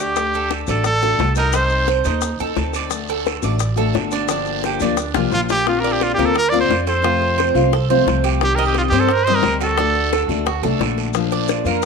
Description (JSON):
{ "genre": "latin, Cuban son and guajira", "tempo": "175 BPM", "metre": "4/4", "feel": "straight", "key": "unclear", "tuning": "A4 = 441 Hz", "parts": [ { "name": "brilliant trumpet", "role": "melody", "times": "0.0-1.9, 5.3-10.3 s", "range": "F4 to D5", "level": "-19 LUFS", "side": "right 1 dB", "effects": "none" }, { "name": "picked steel-string acoustic guitar", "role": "accompaniment", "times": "0.0-11.8 s", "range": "C3 to A4", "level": "-22 LUFS", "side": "left 13 dB", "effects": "none" }, { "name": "Cuban tres", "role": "arpeggios", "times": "0.0-11.9 s", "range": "D4 to Eb5", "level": "-22 LUFS", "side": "right 12 dB", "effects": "none" }, { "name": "upright bass", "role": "bass", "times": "0.0-11.9 s", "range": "G1 to G2", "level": "-22 LUFS", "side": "right 1 dB", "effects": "none" }, { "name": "bongos", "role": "percussion", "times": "0.2-11.9 s", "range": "none", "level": "-25 LUFS", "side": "left 13 dB", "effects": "none" }, { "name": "guiro", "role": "percussion", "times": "0.2-11.8 s", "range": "none", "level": "-31 LUFS", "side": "right 15 dB", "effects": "none" }, { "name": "maracas", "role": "percussion", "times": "0.2-5.7, 11.1-11.9 s", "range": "none", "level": "-33 LUFS", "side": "left 16 dB", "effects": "none" } ], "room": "wet spring reverb, RT60 1.4 s, studio reverb", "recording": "1960s-style stereo with parts hard left and right", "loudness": "-16 LUFS", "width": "side -5 dB against mid", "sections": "0.0-5.7 A section; 5.7-11.9 B section", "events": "drum fill 5.2-5.7", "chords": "0.0 D; 1.5 Adim/C; 2.9 D; 4.3 Gm7; 5.7 Bbadd9; 7.0 F; 8.4 Cm; 9.8 D; 11.1 Bb" }